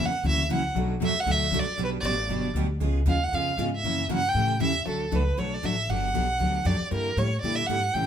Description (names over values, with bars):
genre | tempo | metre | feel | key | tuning
acoustic string swing (jazz manouche) | 234 BPM | 4/4 | swing 56% on 8ths | B minor | A4 = 439 Hz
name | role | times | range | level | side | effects
warm violin | melody | 0.0-8.1 s | A4 to G5 | -27 LUFS | right 2 dB | none
picked steel-string acoustic guitar | accompaniment | 0.0-8.1 s | B2 to G#4 | -31 LUFS | left 7 dB | none
picked steel-string acoustic guitar | accompaniment | 0.0-8.1 s | B2 to B4 | -32 LUFS | right 8 dB | none
upright bass | bass | 0.0-8.1 s | G1 to Bb2 | -28 LUFS | equal | none
room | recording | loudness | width
moderate large studio reverb, RT60 1.0 s | band playing live in one room | -23 LUFS | side -9 dB against mid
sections
0.0-4.9 A section; 4.9-8.1 B section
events
none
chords
0.0 F#7; 0.8 Bm7; 1.8 Gmaj7; 2.8 C#7; 3.8 F#7; 4.4 A7; 4.9 D; 5.9 Gmaj7; 6.9 Gm6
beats
0.24 0.50 | 0.76 1.01 1.27 1.53 | 1.78 2.04 2.30 2.56 | 2.81 3.07 3.33 3.58 | 3.84 4.09 4.35 4.61 | 4.87 5.12 5.38 5.63 | 5.89 6.15 6.41 6.66 | 6.92 7.17 7.43 7.69 | 7.94